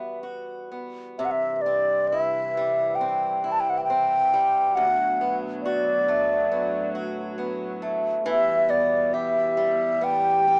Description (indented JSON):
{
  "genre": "celtic folk, Celtic slow air",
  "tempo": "68 BPM",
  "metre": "4/4",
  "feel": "rubato",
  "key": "unclear",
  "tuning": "A4 = 440 Hz",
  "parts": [
    { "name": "baroque flute", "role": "melody", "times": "0.0-10.6 s", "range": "D5 to A5", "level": "-21 LUFS", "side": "equal", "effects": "none" },
    { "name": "picked swing-style acoustic guitar", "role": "accompaniment", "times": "0.0-10.6 s", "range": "D2 to G4", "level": "-29 LUFS", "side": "equal", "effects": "none" },
    { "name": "dark studio string section", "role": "sustained chords", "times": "1.2-10.6 s", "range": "C2 to G3", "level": "-35 LUFS", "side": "equal", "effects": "none" }
  ],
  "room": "light reverb",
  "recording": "rough home demo mix, small speaker sound",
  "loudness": "-21 LUFS",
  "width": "side -37 dB against mid",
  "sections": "0.0-1.2 A section; 1.2-10.6 B section",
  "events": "none",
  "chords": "0.0 Emadd9; 1.2 C; 4.8 D6; 8.3 Em"
}